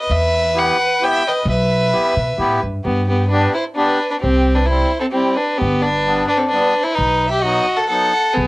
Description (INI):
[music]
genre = alpine folk, alpine dance band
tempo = 131 BPM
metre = 3/4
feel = straight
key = G major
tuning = A4 = 440 Hz
[part]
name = rich fiddle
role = melody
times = 0.0-8.5 s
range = B3 to G5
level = -17 LUFS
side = left 1 dB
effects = none
[part]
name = rich violin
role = second line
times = 0.0-8.5 s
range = G4 to F#5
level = -22 LUFS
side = right 2 dB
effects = cassette tape
[part]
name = upright bass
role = bass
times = 0.1-8.5 s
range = G1 to B2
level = -20 LUFS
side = equal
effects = none
[part]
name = accordion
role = accompaniment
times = 0.5-8.1 s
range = F#3 to G4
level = -20 LUFS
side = left 1 dB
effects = cassette tape
[sound]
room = light reverb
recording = home recording on cassette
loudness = -14 LUFS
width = side -20 dB against mid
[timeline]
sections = 0.0-2.8 A section; 2.8-8.5 B section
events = none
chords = 0.1 Em; 2.8 G; 4.2 C; 5.6 G; 7.0 B7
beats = | 0.09 0.55 1.01 | 1.46 1.92 2.38 | 2.85 3.31 3.77 | 4.23 4.69 5.14 | 5.60 6.06 6.52 | 6.98 7.44 7.90 | 8.37